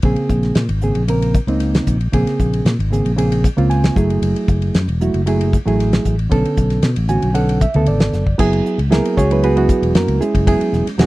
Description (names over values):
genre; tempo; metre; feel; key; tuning
electric jazz fusion; 115 BPM; 4/4; straight; unclear; A4 = 439 Hz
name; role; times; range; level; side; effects
reed electric piano; accompaniment; 0.0-11.1 s; Db3 to Ab5; -17 LUFS; right 2 dB; none
fretless electric bass; bass; 0.0-11.1 s; Fb1 to B2; -17 LUFS; left 1 dB; none
damped 70s drum kit; drums; 0.0-11.1 s; crash cymbal, hi-hat, kick drum, ride cymbal, snare drum; -19 LUFS; equal; none
room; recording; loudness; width
little or no reverb; dry, close 1970s-style studio recording; -14 LUFS; side -18 dB against mid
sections
0.0-8.4 A section; 8.4-11.1 B section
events
reed electric piano fill 3.4-4.2, 6.8-8.4; drum fill 8.1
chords
0.0 Bbm9; 4.0 Gbm9; 6.3 Bm9; 8.4 Gb9sus4